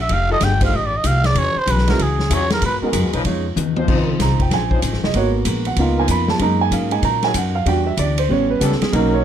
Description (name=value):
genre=jazz, big band swing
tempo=190 BPM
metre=4/4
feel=swing 64% on 8ths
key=unclear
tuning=A4 = 439 Hz
part: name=trumpet with cup mute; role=melody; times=0.0-2.8 s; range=G#4 to G5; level=-20 LUFS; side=right 2 dB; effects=none
part: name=upright bass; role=bass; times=0.0-9.2 s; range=F1 to Bb2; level=-20 LUFS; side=left 1 dB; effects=none
part: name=vintage hollow-body jazz guitar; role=accompaniment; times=0.1-9.2 s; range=A2 to A#4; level=-28 LUFS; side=left 7 dB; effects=none
part: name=swinging big-band drum kit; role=drums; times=0.1-9.0 s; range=crash cymbal, hi-hat, kick drum, ride cymbal, snare drum, toms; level=-23 LUFS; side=left 1 dB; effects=none
part: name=warm trombone section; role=sustained chords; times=0.3-9.2 s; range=E#3 to B#4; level=-25 LUFS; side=left 3 dB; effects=none
part: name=warm baby grand piano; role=accompaniment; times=0.6-9.2 s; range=G3 to Cb6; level=-20 LUFS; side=right 5 dB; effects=none
room=light reverb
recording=close, detailed microphones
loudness=-15 LUFS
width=side -9 dB against mid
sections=0.0-3.9 A section; 3.9-9.2 A section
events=muted trumpet solo 0.0-3.9; drum fill 3.6-3.9; grand piano solo 3.9-9.2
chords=0.1 F9; 1.4 E69; 2.6 G#m9; 3.3 C#9; 3.9 Dbmaj9; 5.1 Abm9; 5.8 Db13; 6.4 Gb6; 7.7 Em7; 8.3 A9